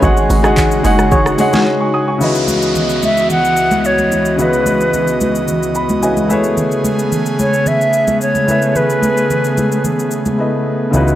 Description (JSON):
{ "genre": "amapiano", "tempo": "110 BPM", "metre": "4/4", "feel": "straight", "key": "C# minor", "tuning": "A4 = 439 Hz", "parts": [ { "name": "warm concert grand piano", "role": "accompaniment", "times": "0.0-11.2 s", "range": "C#3 to D#6", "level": "-18 LUFS", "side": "left 1 dB", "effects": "none" }, { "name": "airy breathy pad", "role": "sustained chords", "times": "0.0-11.2 s", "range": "C#2 to D#5", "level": "-17 LUFS", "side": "equal", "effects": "chorus" }, { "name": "percussive organ stab", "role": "stabs", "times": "0.0-1.6 s", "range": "F#4 to C#5", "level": "-20 LUFS", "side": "right 1 dB", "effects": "chorus, tape echo" }, { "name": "hollow log drum bass", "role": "bass", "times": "0.0-1.4 s", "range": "F#1 to G#1", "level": "-16 LUFS", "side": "equal", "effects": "none" }, { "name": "smooth R&B drum kit", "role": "drums", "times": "0.0-11.2 s", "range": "handclaps, hi-hat, kick drum, rim click, shaker, snare drum", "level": "-21 LUFS", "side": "equal", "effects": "none" }, { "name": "congas", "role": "percussion", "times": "0.0-11.1 s", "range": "none", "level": "-20 LUFS", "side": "equal", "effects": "none" }, { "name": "downlifter", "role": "sound effects", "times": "2.2-6.6 s", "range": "none", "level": "-25 LUFS", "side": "equal", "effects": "none" }, { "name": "silver concert flute", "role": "melody", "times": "3.0-9.8 s", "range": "B4 to F#5", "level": "-16 LUFS", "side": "equal", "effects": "none" }, { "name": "fat analog bass", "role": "bass", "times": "10.9-11.2 s", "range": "C#2", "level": "-13 LUFS", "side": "equal", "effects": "none" } ], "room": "light reverb", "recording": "dry, gritty hardware recording", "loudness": "-12 LUFS", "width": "side -13 dB against mid", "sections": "0.0-2.2 A section; 2.2-11.2 B section", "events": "drop 0.0-2.2; break 1.7-2.2; grand piano fill 5.5-6.6; drums muted 10.4-10.9", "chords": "0.0 G#7sus4; 2.2 C#m11; 6.3 Amaj9", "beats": "| 0.03 0.57 1.12 1.66 | 2.21 2.75 3.30 3.85 | 4.39 4.94 5.48 6.03 | 6.57 7.12 7.66 8.21 | 8.76 9.30 9.85 10.39 | 10.94" }